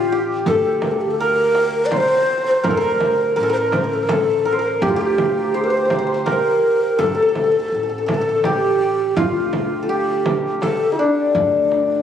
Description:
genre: Persian modal ensemble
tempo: 83 BPM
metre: 3/4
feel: straight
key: unclear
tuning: A4 = 441 Hz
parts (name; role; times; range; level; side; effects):
- santur; melody; 0.0-12.0 s; D4 to C5; -20 LUFS; left 2 dB; none
- breathy mellow low ney; second line; 0.0-12.0 s; D4 to D5; -19 LUFS; equal; none
- upright bass; bass; 0.0-12.0 s; A1 to D2; -29 LUFS; equal; none
- frame drum; percussion; 0.5-11.5 s; none; -26 LUFS; right 2 dB; none
- tombak; percussion; 0.5-12.0 s; none; -33 LUFS; right 2 dB; none
room: moderate recital hall reverb, RT60 1.6 s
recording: recorded on a phone in the room, club reverb, compression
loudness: -16 LUFS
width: side -9 dB against mid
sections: 0.0-12.0 A section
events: none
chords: none

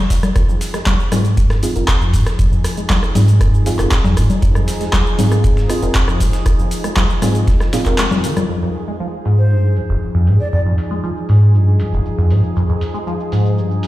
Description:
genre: acid house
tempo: 118 BPM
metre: 4/4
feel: straight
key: unclear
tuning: A4 = 440 Hz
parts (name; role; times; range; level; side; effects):
- liquid acid bass; riff; 0.1-13.9 s; F1 to Ab3; -16 LUFS; equal; phaser, tube saturation, wide subtle chorus, sidechain pumping, ping-pong delay
- booming analog drum machine; drums; 0.1-13.9 s; congas, handclaps, hi-hat, rim click, shaker; -20 LUFS; left 2 dB; low-pass filter on snare, low-pass filter on hats, low-pass filter on perc
- dusty soul sampler-style drum kit; drums; 0.1-8.4 s; hi-hat, snare drum; -33 LUFS; equal; none
- electronic kick drum; drums; 0.1-8.0 s; none; -16 LUFS; equal; none
- warm analog pad; sustained chords; 0.4-13.9 s; F3 to Ab4; -25 LUFS; left 1 dB; chorus, sidechain pumping
- deep mellow chord stab; stabs; 1.1-8.0 s; C4 to Bb4; -24 LUFS; right 1 dB; chorus, ping-pong delay
- mellow hollow jazz flute; melody; 9.4-10.6 s; C5 to D5; -27 LUFS; equal; ping-pong delay
room: light reverb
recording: played on a big sound system in a bare room, large studio reverb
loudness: -13 LUFS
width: side -16 dB against mid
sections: 0.0-8.5 A section; 8.5-13.9 B section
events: filter sweep on acid bass 0.0-8.5; kick drops out 8.0-8.5; filter sweep on drum 8.5-13.9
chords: 0.0 Fm7

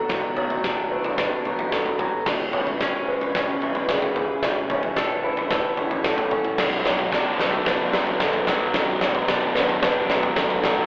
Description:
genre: post-rock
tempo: 111 BPM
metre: 4/4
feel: straight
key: B dorian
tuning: A4 = 440 Hz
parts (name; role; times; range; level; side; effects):
- icy glass pad; sustained chords; 0.0-10.9 s; B3 to F#5; -32 LUFS; equal; none
- felt-muted upright piano; arpeggios; 0.0-10.9 s; G#4 to C#5; -28 LUFS; equal; none
- twangy electric guitar; arpeggios; 0.0-10.9 s; B1 to A4; -28 LUFS; equal; none
- fuzz fingered electric bass; bass; 0.1-10.7 s; B0; -33 LUFS; equal; none
- big rock drum kit; drums; 0.1-10.8 s; crash cymbal, kick drum, snare drum, toms; -23 LUFS; equal; none
- sludgy distorted guitar; riff; 6.6-10.9 s; B1 to B2; -25 LUFS; equal; overdrive
room: wet recital hall reverb, RT60 1.7 s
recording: recorded in a church or concert hall, telephone sound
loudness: -20 LUFS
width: side -32 dB against mid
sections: 0.0-10.9 A section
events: build-up 0.0-10.9; drum fill 0.0-10.9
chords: 0.0 Bm7; 2.3 C#m7/B; 4.4 A6/B; 6.6 Bm7

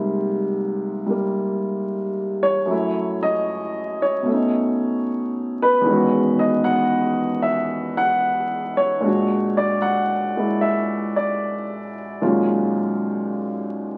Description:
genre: solo jazz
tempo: 76 BPM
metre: 4/4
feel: swing 69% on 8ths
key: unclear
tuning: A4 = 440 Hz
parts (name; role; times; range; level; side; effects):
- warm upright piano; solo; 0.0-14.0 s; Eb2 to F#5; -22 LUFS; equal; none
room: moderate large studio reverb, RT60 1.2 s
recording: very old 78 rpm record, vinyl crackle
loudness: -21 LUFS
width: mono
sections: 0.0-14.0 A section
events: none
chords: 0.0 Abmaj9; 2.7 Gbm7; 4.3 B9; 5.9 Emaj13; 9.0 Bbaug7; 12.2 Ebm11

